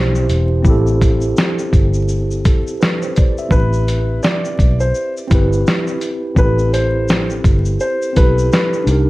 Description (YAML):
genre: lo-fi hip hop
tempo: 84 BPM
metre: 4/4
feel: swing 60% on 16ths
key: A minor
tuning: A4 = 440 Hz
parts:
  - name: mellow tine electric piano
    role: accompaniment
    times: 0.0-9.1 s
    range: C4 to E5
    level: -20 LUFS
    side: equal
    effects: medium stereo tremolo, low-pass filter
  - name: vintage muted fingered electric bass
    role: bass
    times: 0.0-9.1 s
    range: E1 to C2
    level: -16 LUFS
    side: equal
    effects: none
  - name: dusty soul sampler-style drum kit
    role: drums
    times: 0.2-9.1 s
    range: hi-hat, kick drum, shaker, snare drum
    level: -15 LUFS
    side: equal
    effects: vintage 12-bit sampler grit
  - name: felt-muted upright piano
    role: melody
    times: 3.5-8.8 s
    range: B4 to D5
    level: -20 LUFS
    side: left 1 dB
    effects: low-pass filter, tape echo
room: moderate studio reverb, RT60 0.6 s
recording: vinyl crackle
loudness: -13 LUFS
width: side -19 dB against mid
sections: 0.0-3.5 A section; 3.5-9.1 B section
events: none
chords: 0.0 Am9